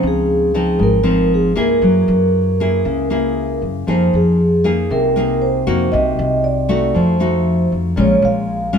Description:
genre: bossa nova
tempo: 117 BPM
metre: 4/4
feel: straight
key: F minor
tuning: A4 = 440 Hz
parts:
  - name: vibraphone with soft mallets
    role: melody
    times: 0.0-8.8 s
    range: Ab4 to F5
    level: -18 LUFS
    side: right 2 dB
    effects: none
  - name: nylon-string guitar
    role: accompaniment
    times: 0.0-8.8 s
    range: Ab2 to Ab4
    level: -16 LUFS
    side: left 2 dB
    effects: none
  - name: upright bass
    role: bass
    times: 0.0-8.8 s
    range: Ab1 to Gb2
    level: -21 LUFS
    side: equal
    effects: none
room: moderate studio reverb, RT60 0.8 s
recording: band playing live in one room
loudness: -13 LUFS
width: side -7 dB against mid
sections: 0.0-8.8 A section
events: none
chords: 0.0 Dbmaj9; 1.8 Gb9; 3.9 Fm7; 5.9 Cm7b5; 6.9 F7b9; 8.0 Bbm7

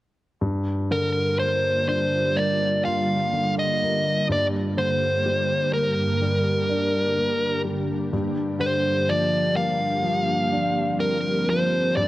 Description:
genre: pop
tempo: 62 BPM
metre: 4/4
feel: straight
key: G minor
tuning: A4 = 440 Hz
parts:
  - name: warm concert grand piano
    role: accompaniment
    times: 0.4-12.1 s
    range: G2 to F4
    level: -26 LUFS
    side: left 1 dB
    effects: none
  - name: ethereal airy pad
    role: sustained chords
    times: 1.3-12.1 s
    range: G2 to G4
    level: -28 LUFS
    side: right 1 dB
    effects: ensemble chorus, built-in reverb
  - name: dark smooth lead guitar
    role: melody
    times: 0.9-12.1 s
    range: Bb4 to F5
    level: -23 LUFS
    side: equal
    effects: overdrive
room: moderate scoring stage reverb, RT60 1.8 s, studio reverb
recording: worn, warbling old tape, cassette tape, warbly pitch drift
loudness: -21 LUFS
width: side -16 dB against mid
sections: 0.4-12.1 A section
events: none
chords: 0.4 Gm7; 4.3 Gmadd11; 8.1 Gm7

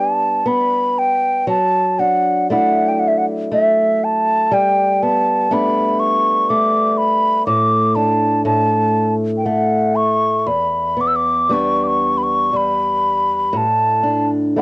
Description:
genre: celtic folk, Celtic slow air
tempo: 60 BPM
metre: 3/4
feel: rubato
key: D major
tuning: A4 = 440 Hz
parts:
  - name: mellow wooden flute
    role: melody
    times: 0.0-14.6 s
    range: E5 to E6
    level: -15 LUFS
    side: equal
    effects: cassette tape
  - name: fingerpicked old ladder-braced acoustic guitar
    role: accompaniment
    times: 0.0-14.6 s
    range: E2 to G4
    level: -19 LUFS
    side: equal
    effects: cassette tape
room: light reverb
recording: home recording on cassette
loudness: -14 LUFS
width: side -24 dB against mid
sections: 0.0-14.6 A section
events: none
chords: 0.0 G; 1.5 Dadd9/F#; 4.5 Gadd9; 7.5 Asus4; 8.4 N.C.; 10.5 Em7; 13.5 Asus4

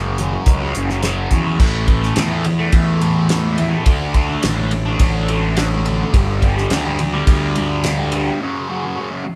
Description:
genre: psychedelic rock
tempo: 106 BPM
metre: 4/4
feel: straight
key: A mixolydian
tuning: A4 = 439 Hz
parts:
  - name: fuzz guitar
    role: riff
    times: 0.0-9.3 s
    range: F#2 to D4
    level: -23 LUFS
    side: equal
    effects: distortion, phaser
  - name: fuzz picked electric bass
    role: bass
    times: 0.0-8.3 s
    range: F#1 to E2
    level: -22 LUFS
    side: equal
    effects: overdrive
  - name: damped 70s drum kit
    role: drums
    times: 0.2-8.3 s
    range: crash cymbal, hi-hat, kick drum, ride cymbal, snare drum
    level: -21 LUFS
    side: equal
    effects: none
  - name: congas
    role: percussion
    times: 0.2-8.1 s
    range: none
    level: -34 LUFS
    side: equal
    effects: none
room: moderate small room reverb, RT60 0.5 s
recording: band playing live in one room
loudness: -17 LUFS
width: mono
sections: 0.0-1.6 A section; 1.6-9.4 B section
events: break 8.4-9.4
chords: 0.0 F#5; 1.6 A5; 3.9 D5; 6.1 G5; 8.4 F#5

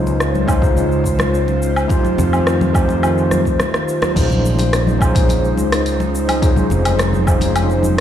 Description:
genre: sunset chillout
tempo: 106 BPM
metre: 4/4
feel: straight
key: Bb dorian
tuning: A4 = 440 Hz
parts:
  - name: overdriven tine electric piano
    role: accompaniment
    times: 0.0-8.0 s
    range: Ab3 to C5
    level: -21 LUFS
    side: left 1 dB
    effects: fast tremolo, auto-pan, ping-pong delay
  - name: airy breathy pad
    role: sustained chords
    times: 0.0-8.0 s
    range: Db3 to C5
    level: -21 LUFS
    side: equal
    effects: chorus
  - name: fretless electric bass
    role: bass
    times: 0.0-8.0 s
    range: F1 to F2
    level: -18 LUFS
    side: equal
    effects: none
  - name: deep house drum kit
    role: drums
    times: 0.1-8.0 s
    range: crash cymbal, hi-hat, rim click, shaker, woodblock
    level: -22 LUFS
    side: equal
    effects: none
  - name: congas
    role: percussion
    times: 0.1-7.9 s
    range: none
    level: -24 LUFS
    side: left 3 dB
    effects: none
  - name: electronic kick drum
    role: drums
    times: 0.5-7.4 s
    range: none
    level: -16 LUFS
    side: equal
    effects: none
room: light reverb, digital ambience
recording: played on a big sound system in a bare room, stone room reverb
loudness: -13 LUFS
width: side -10 dB against mid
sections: 0.0-4.2 A section; 4.2-8.0 B section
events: drum fill 3.3-4.2; break 3.6-4.2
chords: 0.0 Dbmaj7; 1.9 F7; 4.2 Bbm11

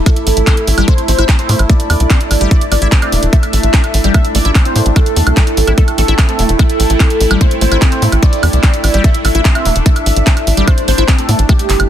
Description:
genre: psychedelic trance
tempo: 147 BPM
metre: 4/4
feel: straight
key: A minor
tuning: A4 = 441 Hz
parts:
  - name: bubbling stepped-filter texture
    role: sustained chords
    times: 0.0-11.9 s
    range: A3 to E4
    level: -22 LUFS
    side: equal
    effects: chorus, built-in reverb, sidechain pumping
  - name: tight sequencer bass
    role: bass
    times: 0.0-11.9 s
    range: E1 to A2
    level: -12 LUFS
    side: equal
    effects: none
  - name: warbly tape-like pad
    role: texture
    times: 0.0-11.9 s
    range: E4 to D6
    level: -22 LUFS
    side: right 3 dB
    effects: chorus, built-in reverb, sidechain pumping
  - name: wide unison lead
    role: melody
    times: 0.1-11.9 s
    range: G4 to E5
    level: -19 LUFS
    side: equal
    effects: phaser, sidechain pumping, ping-pong delay
  - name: liquid acid bass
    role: riff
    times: 0.1-11.5 s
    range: G3 to E4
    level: -21 LUFS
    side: moving between left 6 dB and right 1 dB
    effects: phaser, auto-pan, sidechain pumping, ping-pong delay
  - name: electronic kick drum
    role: drums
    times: 0.1-11.6 s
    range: none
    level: -10 LUFS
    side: equal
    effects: studio reverb
  - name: techno drum kit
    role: drums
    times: 0.1-11.9 s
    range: handclaps, hi-hat, woodblock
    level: -18 LUFS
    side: right 2 dB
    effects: overdrive, studio reverb
room: digital ambience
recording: dense, heavily limited modern master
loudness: -9 LUFS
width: side -10 dB against mid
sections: 0.0-11.9 A section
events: none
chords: 0.0 A5

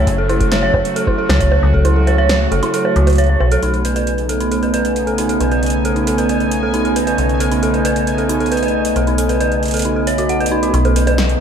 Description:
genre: IDM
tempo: 135 BPM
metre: 4/4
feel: straight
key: unclear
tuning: A4 = 440 Hz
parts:
  - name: warbly tape-like pad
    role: sustained chords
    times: 0.0-11.4 s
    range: C#3 to F#4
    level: -19 LUFS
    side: right 1 dB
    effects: chorus, built-in reverb
  - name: metallic FM bass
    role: bass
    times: 0.0-11.4 s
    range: F#1 to C#2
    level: -18 LUFS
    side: left 1 dB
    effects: none
  - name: electro analog drum machine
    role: drums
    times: 0.1-11.4 s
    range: bongos, hi-hat, snare drum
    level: -24 LUFS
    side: right 2 dB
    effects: overdrive, analog delay
  - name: electronic kick drum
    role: drums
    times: 0.1-1.8 s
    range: none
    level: -20 LUFS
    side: left 1 dB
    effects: overdrive
  - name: dark detuned synth bell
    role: arpeggios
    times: 0.2-11.2 s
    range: D#4 to F#5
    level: -18 LUFS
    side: right 2 dB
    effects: chorus, vintage 12-bit sampler grit, low-pass filter, analog delay
  - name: bubbling stepped-filter texture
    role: texture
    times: 3.9-10.7 s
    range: G#5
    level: -28 LUFS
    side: equal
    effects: chorus, built-in reverb
room: moderate echo chamber reverb, RT60 1.5 s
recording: echo-heavy mix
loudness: -13 LUFS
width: side -8 dB against mid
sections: 0.0-3.6 A section; 3.6-10.7 B section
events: kick drops out 1.8-3.6; filter sweep on synth bell 3.6-10.7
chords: 0.0 F#m; 3.6 B9

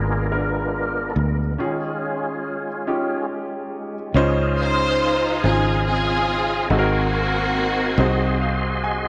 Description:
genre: gospel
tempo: 47 BPM (dotted quarters)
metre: 6/8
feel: straight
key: unclear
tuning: A4 = 440 Hz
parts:
  - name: clear concert grand piano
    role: accompaniment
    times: 0.0-9.1 s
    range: Ab2 to Ab5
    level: -27 LUFS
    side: equal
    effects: none
  - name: tonewheel organ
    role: sustained chords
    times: 0.0-9.1 s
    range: Ab3 to C6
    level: -29 LUFS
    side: equal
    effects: fast rotary speaker, chorus vibrato
  - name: fingered electric bass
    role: bass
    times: 0.0-9.1 s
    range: Ab1 to D2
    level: -26 LUFS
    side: equal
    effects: none
  - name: warm studio string section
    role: melody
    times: 4.6-8.8 s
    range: Bb3 to C5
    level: -24 LUFS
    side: equal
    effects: none
room: moderate plate reverb, RT60 2.7 s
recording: none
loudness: -21 LUFS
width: mono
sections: 0.0-4.2 A section; 4.2-9.1 B section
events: tonewheel organ solo 0.0-4.2; break 1.6-4.2; grand piano fill 8.0-9.1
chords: 0.0 Bb7b9; 1.6 Eb9sus4; 4.2 Dbmaj9; 6.7 Ab9; 8.0 Ab7/C

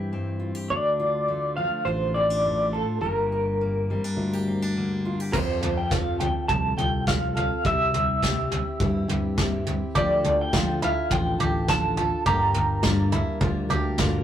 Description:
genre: indie folk with a building arrangement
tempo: 104 BPM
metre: 4/4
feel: straight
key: F major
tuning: A4 = 440 Hz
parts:
  - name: electric guitar through a small old amp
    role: melody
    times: 0.0-14.0 s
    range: A4 to Bb5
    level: -25 LUFS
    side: equal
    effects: tremolo
  - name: fingerpicked steel-string acoustic guitar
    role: accompaniment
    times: 0.0-5.3 s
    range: G2 to G4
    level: -28 LUFS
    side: left 1 dB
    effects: none
  - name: fingered electric bass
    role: bass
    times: 0.0-14.2 s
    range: G1 to G2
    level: -30 LUFS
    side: equal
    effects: none
  - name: picked steel-string acoustic guitar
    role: accompaniment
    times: 5.3-14.2 s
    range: G2 to Bb4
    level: -29 LUFS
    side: left 1 dB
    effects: none
  - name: soft brush drum kit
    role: drums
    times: 5.3-14.1 s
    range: crash cymbal, kick drum, snare drum, toms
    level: -26 LUFS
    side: right 1 dB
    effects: none
  - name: bluegrass banjo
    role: arpeggios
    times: 10.0-14.2 s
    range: E4 to A4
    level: -30 LUFS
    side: right 2 dB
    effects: none
room: wet booth ambience, RT60 0.3 s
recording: rough rehearsal-room recording, warm saturation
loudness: -22 LUFS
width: side -10 dB against mid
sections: 0.0-5.3 A section; 5.3-14.2 B section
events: none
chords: 0.0 C; 0.7 Dm; 3.0 Gm; 5.3 F; 7.6 C; 10.0 Dm; 12.3 Gm

